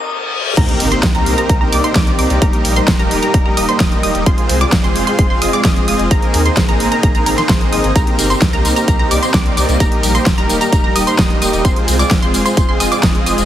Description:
EDM, festival progressive house; 130 BPM; 4/4; straight; A4 = 437 Hz
felt-muted upright piano; accompaniment; 0.0-0.6 s; Ab2 to Ab4; -34 LUFS; left 5 dB; sidechain pumping, tape echo
reverse cymbal and impact; sound effects; 0.0-2.4 s; -22 LUFS; left 2 dB
lush unison pad; sustained chords; 0.6-13.5 s; G4 to C6; -25 LUFS; equal; chorus, phaser, sidechain pumping
wide unison pluck; arpeggios; 0.6-13.5 s; Bb5 to Eb6; -21 LUFS; right 1 dB; sidechain pumping, tape echo
dense compressed supersaw; riff; 0.6-13.5 s; G3 to Eb5; -17 LUFS; equal; cassette tape, sidechain pumping, tape echo
saturated sub bass; bass; 0.6-13.5 s; Eb1 to Eb2; -21 LUFS; equal; sidechain pumping
big-room dance drum kit; drums; 0.6-13.5 s; crash cymbal, hi-hat, snare drum, tambourine; -19 LUFS; equal; overdrive, small room ambience
electronic kick drum; drums; 0.6-13.1 s; -14 LUFS; equal; overdrive, small room ambience
light reverb, digital ambience; heavily compressed radio sound, high-pass filter; -11 LUFS; side -11 dB against mid
0.6-13.5 A section
break 0.0-0.6; reverse cymbal 0.0-0.6; drop 0.6-13.5; impact 0.6-2.4
0.0 Abadd9; 0.6 Cm7; 2.4 Eb; 4.3 Fm; 6.1 Abadd9; 8.0 Cm7; 9.8 Eb; 11.6 Fm
0.11 | 0.57 1.03 1.49 1.96 | 2.42 2.88 3.34 3.80 | 4.26 4.72 5.19 5.65 | 6.11 6.57 7.03 7.49 | 7.96 8.42 8.88 9.34 | 9.80 10.26 10.72 11.19 | 11.65 12.11 12.57 13.03

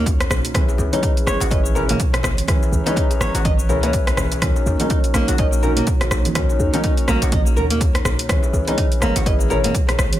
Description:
afro house; 124 BPM; 4/4; swing 58% on 16ths; A4 = 436 Hz
dark analog pad; sustained chords; 0.0-10.2 s; Fb3 to Bb5; -28 LUFS; right 2 dB; chorus, sidechain pumping
flamenco guitar; arpeggios; 0.0-9.7 s; Bb3 to Eb5; -25 LUFS; right 1 dB; sidechain pumping, ping-pong delay
felt-muted upright piano; stabs; 0.0-9.7 s; Db4 to Db5; -25 LUFS; left 4 dB; sidechain pumping, low-pass filter, ping-pong delay
warm 808-style bass; bass; 0.0-10.2 s; Ab1 to Eb2; -22 LUFS; equal; tube saturation, sidechain pumping
deep house drum kit; drums; 0.1-10.2 s; hi-hat, rim click, shaker, toms; -24 LUFS; equal; overdrive, small room ambience
electronic kick drum; drums; 0.1-9.9 s; -20 LUFS; equal; overdrive, small room ambience
djembe; percussion; 0.1-10.1 s; -30 LUFS; left 1 dB
congas; percussion; 0.3-10.2 s; -29 LUFS; right 4 dB
small room ambience; -16 LUFS; side -13 dB against mid
0.0-10.2 A section
filter sweep on felt piano 0.0-10.2
0.0 Ebm7; 0.5 Dbm7; 4.4 Ebm7; 8.3 Dbm7
0.07 | 0.55 1.03 1.52 2.00 | 2.48 2.97 3.45 3.94 | 4.42 4.90 5.39 5.87 | 6.36 6.84 7.32 7.81 | 8.29 8.78 9.26 9.74

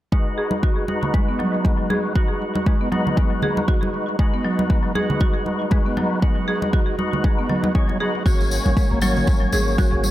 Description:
afro house; 118 BPM; 4/4; swing 57% on 16ths; G# minor; A4 = 438 Hz
buzzing marimba with medium hard mallets; arpeggios; 0.1-9.9 s; F#3 to G#4; -24 LUFS; right 2 dB; sidechain pumping, low-pass filter, analog delay
percussive tonewheel organ; stabs; 0.1-10.1 s; G#3 to C#5; -25 LUFS; left 2 dB; overdrive, chorus vibrato, slow rotary speaker, sidechain pumping, low-pass filter, dub echo
electronic kick drum; drums; 0.1-9.9 s; -19 LUFS; equal
congas; percussion; 0.5-10.1 s; -27 LUFS; right 1 dB; dub echo
warm 808-style bass; bass; 8.3-10.1 s; G#1; -22 LUFS; equal; sidechain pumping
tambourine; percussion; 8.3-10.1 s; -32 LUFS; left 3 dB; dub echo
light reverb, small room ambience; echo-heavy mix; -18 LUFS; side -14 dB against mid
0.1-10.1 A section
filter sweep on marimba 0.1-10.1
0.1 G#m7; 8.3 F#/G#
| 0.12 0.63 1.14 1.65 | 2.16 2.67 3.17 3.68 | 4.19 4.70 5.21 5.72 | 6.22 6.73 7.24 7.75 | 8.26 8.77 9.28 9.78

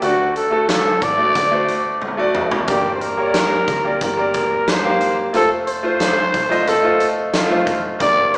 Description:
piano-driven pop; 90 BPM; 4/4; straight; A4 = 439 Hz
growling trumpet; melody; 0.0-8.4 s; F4 to D5; -18 LUFS; equal
clear grand piano; accompaniment; 0.0-8.4 s; G2 to F5; -19 LUFS; equal
plucky analog bass; bass; 0.0-8.4 s; F1 to D2; -33 LUFS; equal
huge arena drum kit; drums; 0.0-8.4 s; hi-hat, kick drum, snare drum, toms; -22 LUFS; equal
wet large studio reverb, RT60 1.5 s; band playing live in one room, small speaker sound; -15 LUFS; side -29 dB against mid
0.0-8.4 A section
drum fill 2.0-2.7
0.0 D; 2.7 Gm; 5.3 F
| 0.02 0.68 1.35 2.02 | 2.68 3.35 4.01 4.68 | 5.34 6.01 6.68 7.34 | 8.01

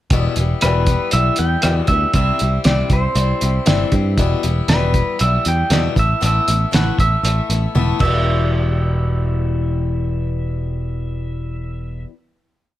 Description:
folk rock and heartland rock; 118 BPM; 4/4; straight; E minor; A4 = 439 Hz
picked swing-style acoustic guitar; accompaniment; 0.1-12.1 s; E2 to E4; -24 LUFS; left 7 dB
picked electric bass; bass; 0.1-12.0 s; E1 to G2; -18 LUFS; right 1 dB
cloth-damped thuddy drum kit; drums; 0.1-8.1 s; crash cymbal, hi-hat, kick drum, rim click, snare drum, toms; -19 LUFS; right 1 dB
pedal steel guitar; melody; 0.6-12.0 s; B4 to G5; -21 LUFS; right 2 dB
little or no reverb; -15 LUFS; side -14 dB against mid
0.1-8.3 verse; 8.3-12.3 final hit
drum fill 7.7-8.3
0.1 Em; 2.1 C; 4.2 Em; 6.0 Asus2; 8.0 Em
| 0.12 0.62 1.13 1.64 | 2.15 2.66 3.17 3.67 | 4.18 4.69 5.20 5.71 | 6.22 6.73 7.24 7.75 | 8.26 8.76 9.27 9.78 | 10.28 10.79 11.29 11.80

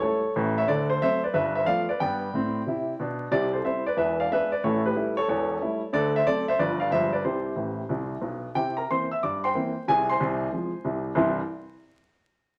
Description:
jazz, stride piano; 183 BPM; 4/4; swing 65% on 8ths; C major; A4 = 439 Hz
warm baby grand piano; solo; 0.0-11.4 s; E1 to E6; -26 LUFS; equal
wet studio reverb, RT60 0.8 s; vinyl crackle; -26 LUFS; mono
0.0-8.6 A section; 8.6-11.2 B section; 11.2-12.5 C section
grand piano fill 7.6-8.6
0.0 A7; 0.7 D7; 1.3 G9; 2.0 G; 3.3 C; 4.0 E7; 4.6 A7; 5.9 D7; 6.6 G7; 6.9 G7b9; 7.2 C5; 8.6 C7; 9.9 Fm/C; 11.2 C
0.03 0.36 | 0.69 1.01 1.34 1.67 | 2.00 2.33 2.65 2.98 | 3.31 3.64 3.97 4.29 | 4.62 4.95 5.28 5.61 | 5.93 6.26 6.59 6.92 | 7.24 7.57 7.90 8.23 | 8.55 8.88 9.21 9.54 | 9.87 10.19 10.52 10.85 | 11.18

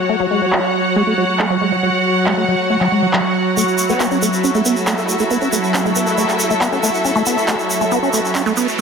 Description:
psychedelic trance; 138 BPM; 4/4; straight; A4 = 440 Hz
evolving wavetable pad; sustained chords; 0.0-8.8 s; F#3 to F#4; -20 LUFS; right 2 dB; phaser, built-in reverb
downlifter and riser; sound effects; 0.0-0.1, 7.9-8.8 s; -31 LUFS; right 1 dB
muted studio string section; texture; 0.0-8.8 s; E4 to F#5; -20 LUFS; left 1 dB
liquid acid bass; riff; 0.1-8.8 s; F#3 to C#4; -19 LUFS; moving between left 5 dB and right 5 dB; phaser, auto-pan, tape echo
electronic handclaps; drums; 0.5-8.4 s; -23 LUFS; equal; overdrive, low-pass filter on hats, low-pass filter on snare, low-pass filter on cymbals
tube shaker; percussion; 3.6-8.8 s; -24 LUFS; right 2 dB
formant-sweep wobble bass; second line; 3.9-6.9 s; A3 to B3; -27 LUFS; left 3 dB; chorus, cassette tape, high-pass filter, ping-pong delay
moderate plate reverb, RT60 2.1 s; dense, heavily limited modern master; -14 LUFS; side -6 dB against mid
0.0-8.8 A section
filter sweep on acid bass 0.0-8.8
0.0 F#5; 3.6 A5
| 0.09 0.53 0.96 1.40 | 1.83 2.27 2.70 3.13 | 3.57 4.00 4.44 4.87 | 5.31 5.74 6.18 6.61 | 7.05 7.48 7.92 8.35 | 8.79

